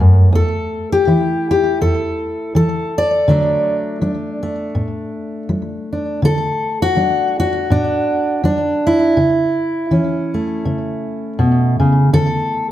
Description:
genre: folk, solo fingerstyle acoustic guitar.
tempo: 82 BPM.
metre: 4/4.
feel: swing 56% on 8ths.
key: unclear.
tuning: A4 = 441 Hz.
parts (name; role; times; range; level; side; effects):
fingerpicked steel-string acoustic guitar; solo; 0.0-12.7 s; E2 to D5; -14 LUFS; equal; slapback echo.
room: moderate large studio reverb, RT60 1.1 s.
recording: none.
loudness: -14 LUFS.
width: side -13 dB against mid.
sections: 0.0-12.7 A section.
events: none.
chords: 0.3 A5/E; 3.3 D; 9.2 A/C#; 12.1 D5.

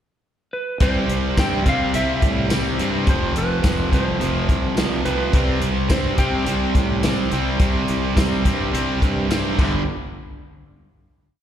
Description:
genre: classic rock.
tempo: 106 BPM.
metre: 4/4.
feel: straight.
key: unclear.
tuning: A4 = 442 Hz.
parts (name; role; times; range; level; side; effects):
clean lap steel guitar; melody; 0.5-9.3 s; B4 to G5; -28 LUFS; equal; slapback echo.
cranked stack guitar; riff; 0.8-9.8 s; F2 to C4; -24 LUFS; right 11 dB; overdrive, slapback echo.
overdriven semi-hollow guitar; riff; 0.8-9.8 s; F2 to C4; -26 LUFS; left 10 dB; none.
fuzz fingered electric bass; bass; 0.8-9.8 s; F1 to C3; -24 LUFS; equal; overdrive.
vintage drum kit; drums; 0.8-9.7 s; crash cymbal, hi-hat, kick drum, snare drum, tambourine; -20 LUFS; equal; none.
room: small room ambience.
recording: live gig heard through the venue's PA, recital hall reverb.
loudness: -18 LUFS.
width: side -10 dB against mid.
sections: 0.0-0.8 pickup bar; 0.8-9.9 verse; 9.9-11.4 final hit.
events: drum fill 9.6.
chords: 0.0 N.C.; 0.8 C; 3.1 F5; 5.3 C5; 9.6 G5; 9.9 N.C..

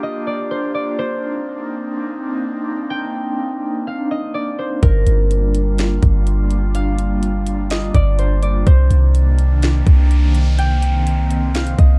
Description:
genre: hip hop, atmospheric cloud-rap.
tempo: 125 BPM.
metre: 4/4.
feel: half-time.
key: unclear.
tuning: A4 = 440 Hz.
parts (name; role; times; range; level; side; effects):
concert harp; melody; 0.0-12.0 s; Bb4 to G5; -28 LUFS; equal; low-pass filter, tape echo.
airy breathy pad; sustained chords; 0.0-12.0 s; C3 to G4; -26 LUFS; equal; chorus, tremolo, sidechain pumping.
warm 808-style bass; bass; 4.8-12.0 s; G1 to C2; -17 LUFS; equal; none.
trap drum kit; drums; 4.8-11.9 s; hi-hat, kick drum, snare drum; -19 LUFS; equal; vintage 12-bit sampler grit.
noise sweep; sound effects; 9.3-12.0 s; none; -37 LUFS; equal; none.
room: digital ambience.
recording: dark, warm production.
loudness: -17 LUFS.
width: mono.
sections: 0.0-12.0 A section.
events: noise sweep 9.3-12.0.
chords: 0.0 Gm7; 1.0 Cm9; 4.8 Gm7; 8.7 Cm9.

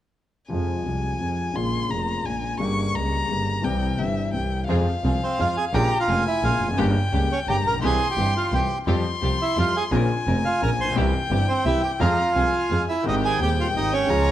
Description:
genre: tango.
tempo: 172 BPM.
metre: 3/4.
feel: rubato.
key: F harmonic minor.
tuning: A4 = 441 Hz.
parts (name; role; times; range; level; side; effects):
dark violin; second line; 0.5-14.3 s; E5 to Db6; -28 LUFS; left 4 dB; analog delay.
warm concert grand piano; accompaniment; 0.5-14.3 s; Eb1 to Ab4; -26 LUFS; left 2 dB; none.
rich double bass; bass; 0.5-14.3 s; F1 to F2; -26 LUFS; right 2 dB; none.
warm symphonic string section; stabs; 4.7-14.3 s; Ab3 to Bb4; -33 LUFS; right 1 dB; analog delay.
bandoneon; melody; 5.2-14.3 s; C4 to C6; -24 LUFS; right 3 dB; none.
room: moderate recital hall reverb, RT60 1.7 s.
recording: close, detailed microphones.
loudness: -20 LUFS.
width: side -12 dB against mid.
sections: 0.5-4.7 A section; 4.7-13.0 B section; 13.0-14.3 C section.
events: none.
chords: 0.5 Fm; 1.6 Bbm7; 2.6 Gdim; 3.6 C; 4.7 Fm; 5.7 Bbm7; 6.8 Gdim; 7.8 C; 8.9 Fsus2; 9.9 Bbmadd9; 11.0 C; 12.0 Fm; 13.0 Abmaj7.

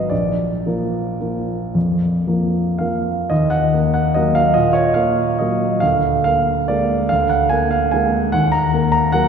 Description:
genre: classical, piano waltz.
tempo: 108-155 BPM.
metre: 3/4.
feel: rubato.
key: Eb minor.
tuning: A4 = 439 Hz.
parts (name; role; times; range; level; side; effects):
warm grand piano; solo; 0.0-9.3 s; Ab1 to Bb5; -15 LUFS; equal; none.
room: wet concert hall reverb, RT60 2.4 s.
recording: heard from further back in the room.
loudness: -15 LUFS.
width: side -6 dB against mid.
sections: 0.0-3.3 A section; 3.3-9.3 B section.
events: none.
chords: 0.1 Bb; 3.3 Ebm; 5.8 Bb7/D; 8.3 Ebm.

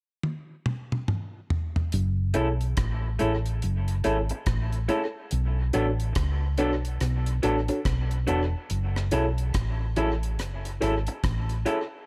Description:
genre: lovers rock reggae.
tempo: 71 BPM.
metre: 4/4.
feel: swing 62% on 16ths.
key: F# minor.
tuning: A4 = 441 Hz.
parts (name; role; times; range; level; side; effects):
deep reggae drum kit; drums; 0.2-11.9 s; hi-hat, kick drum, rim click, toms; -33 LUFS; equal; gated reverb, dub echo.
hollow-body short-scale fingered electric bass; bass; 1.9-11.6 s; E1 to C#2; -29 LUFS; equal; none.
electric guitar through a small old amp; stabs; 2.3-11.8 s; F#3 to A4; -35 LUFS; equal; dub echo.
mellow tine electric piano; accompaniment; 2.4-11.8 s; D4 to C#5; -31 LUFS; equal; none.
room: small room ambience.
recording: none.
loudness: -27 LUFS.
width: mono.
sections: 0.0-1.9 A section; 1.9-12.1 B section.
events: drum fill 0.2-1.9.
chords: 0.0 N.C.; 1.9 F#m7; 5.3 Bm7; 8.7 F#m7.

